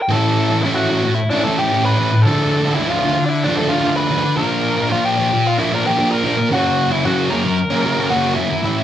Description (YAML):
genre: rock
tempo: 113 BPM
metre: 4/4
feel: straight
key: unclear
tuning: A4 = 438 Hz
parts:
  - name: biting lead guitar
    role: melody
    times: 0.0-8.8 s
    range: D4 to B5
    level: -19 LUFS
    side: equal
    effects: overdrive
  - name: thick fuzz guitar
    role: riff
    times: 0.1-8.8 s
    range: F#2 to E4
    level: -16 LUFS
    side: equal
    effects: distortion
room: moderate large studio reverb, RT60 0.9 s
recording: band playing live in one room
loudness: -14 LUFS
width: side -11 dB against mid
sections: 0.1-8.6 A section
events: none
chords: 0.1 A; 2.2 Dm; 4.4 Bb; 6.5 F#